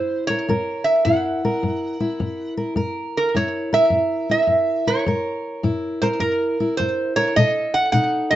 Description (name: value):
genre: acoustic country blues, solo or duo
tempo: 104 BPM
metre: 4/4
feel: swing 66% on 8ths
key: F# mixolydian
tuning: A4 = 440 Hz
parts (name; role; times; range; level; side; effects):
- metal-body resonator slide guitar; melody; 0.0-8.4 s; A#4 to F#5; -19 LUFS; right 2 dB; slapback echo
- fingerpicked steel-string acoustic guitar; accompaniment; 0.0-8.4 s; F#2 to A#4; -22 LUFS; left 1 dB; none
room: moderate small room ambience, RT60 0.5 s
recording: dark, warm production, nothing above 7.8 kHz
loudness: -18 LUFS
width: side -13 dB against mid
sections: 0.0-8.4 A section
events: none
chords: 0.0 F#7; 7.4 B7